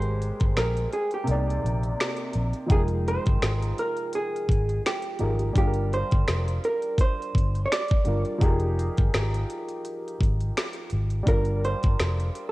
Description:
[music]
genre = lo-fi hip hop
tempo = 84 BPM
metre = 4/4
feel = swing 56% on 16ths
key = unclear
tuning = A4 = 439 Hz
[part]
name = hollow-body jazz guitar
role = melody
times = 0.0-12.5 s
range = G4 to D5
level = -30 LUFS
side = right 2 dB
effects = cassette tape, tape echo
[part]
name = warm upright piano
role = accompaniment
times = 0.0-12.5 s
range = C3 to G5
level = -32 LUFS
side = equal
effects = cassette tape
[part]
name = vintage muted fingered electric bass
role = bass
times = 0.0-12.3 s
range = F1 to C2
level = -26 LUFS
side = equal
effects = none
[part]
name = drum and bass drum kit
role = drums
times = 0.0-12.5 s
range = finger snaps, hi-hat, kick drum, snare drum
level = -24 LUFS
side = equal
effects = cassette tape
[sound]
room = light reverb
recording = home recording on cassette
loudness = -23 LUFS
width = side -19 dB against mid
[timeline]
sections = 0.0-2.7 A section; 2.7-12.5 B section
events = kick muted 1.3-2.7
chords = 0.0 Abmaj9; 1.3 Cm9; 2.7 Fm11; 5.6 Gm7; 8.4 Fm11; 11.3 Gm7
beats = 0.56 1.27 1.98 | 2.70 3.41 4.13 4.84 | 5.56 6.27 6.98 7.70 | 8.41 9.13 9.84 10.56 | 11.27 11.98

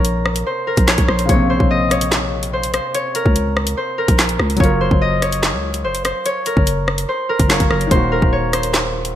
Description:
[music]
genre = hip hop, drill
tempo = 145 BPM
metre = 4/4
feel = half-time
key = Bb minor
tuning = A4 = 440 Hz
[part]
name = concert harp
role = melody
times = 0.0-9.2 s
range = Bb4 to Eb5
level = -20 LUFS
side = equal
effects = low-pass filter
[part]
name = felt-muted upright piano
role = accompaniment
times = 0.0-9.2 s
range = C3 to Bb4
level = -24 LUFS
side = left 2 dB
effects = low-pass filter
[part]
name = growling 808-style bass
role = bass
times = 0.0-9.2 s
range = Eb1 to Db2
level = -20 LUFS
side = equal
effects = none
[part]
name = drill drum kit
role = drums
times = 0.0-9.1 s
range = handclaps, hi-hat, kick drum, rim click, snare drum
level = -17 LUFS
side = equal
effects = none
[sound]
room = moderate plate reverb, RT60 1.6 s, small room ambience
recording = bright 1980s-style digital production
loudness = -14 LUFS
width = side -11 dB against mid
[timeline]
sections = 0.0-9.2 A section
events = none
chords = 0.0 Bbmadd9; 4.6 Gbmaj7; 7.9 Ebm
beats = 0.05 0.46 0.88 | 1.29 1.71 2.12 2.53 | 2.95 3.36 3.77 4.19 | 4.60 5.01 5.43 5.84 | 6.26 6.67 7.08 7.50 | 7.91 8.33 8.74 9.15

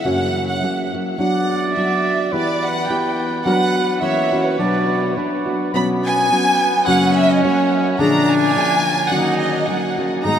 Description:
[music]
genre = mexican folk, mariachi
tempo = 106 BPM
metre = 2/4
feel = swing 53% on 8ths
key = B minor, B major from 5.7 s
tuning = A4 = 440 Hz
[part]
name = warm studio violin section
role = melody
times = 0.0-10.4 s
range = B4 to B5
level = -20 LUFS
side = equal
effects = none
[part]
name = nylon-string guitar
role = accompaniment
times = 0.0-10.4 s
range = F#2 to G#4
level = -19 LUFS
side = left 1 dB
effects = none
[part]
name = mellow trumpet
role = second line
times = 1.2-10.4 s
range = B3 to D5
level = -23 LUFS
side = right 3 dB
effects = none
[sound]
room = wet huge ambient reverb, RT60 7.6 s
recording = in a vast, echoing space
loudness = -15 LUFS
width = side -9 dB against mid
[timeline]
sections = 0.0-5.7 A section; 5.7-10.4 B section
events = none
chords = 0.1 F#; 1.2 Bm/F#; 2.3 Em; 3.5 Bm/F#; 4.0 F#7; 4.6 Bm; 5.7 Bsus2; 6.9 F#; 8.0 A#7; 9.1 D#m7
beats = | 0.06 0.63 | 1.20 1.77 | 2.33 2.90 | 3.46 4.02 | 4.59 5.16 | 5.73 6.30 | 6.87 7.43 | 7.99 8.55 | 9.10 9.66 | 10.24

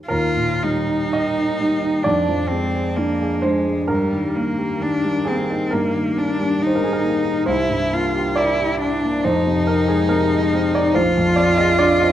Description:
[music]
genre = classical, romantic duo for cello and grand piano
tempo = 55-72 BPM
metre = 4/4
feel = rubato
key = Eb major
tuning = A4 = 439 Hz
[part]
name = clear grand piano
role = accompaniment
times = 0.0-12.1 s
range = Bb1 to Eb5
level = -19 LUFS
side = right 1 dB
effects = none
[part]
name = clear cello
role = melody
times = 0.1-12.1 s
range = G3 to F4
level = -20 LUFS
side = left 1 dB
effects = none
[sound]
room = wet recital hall reverb, RT60 1.6 s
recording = none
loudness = -17 LUFS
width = side -11 dB against mid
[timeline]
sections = 0.1-12.1 A section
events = none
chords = 0.1 Eb; 2.0 Ddim/F; 3.9 Eb/G; 7.5 C7; 9.2 Fm7; 10.9 Bb9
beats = | 0.10 1.14 2.04 2.97 | 3.89 4.80 5.71 6.60 | 7.47 8.37 9.22 10.08 | 10.94 11.80

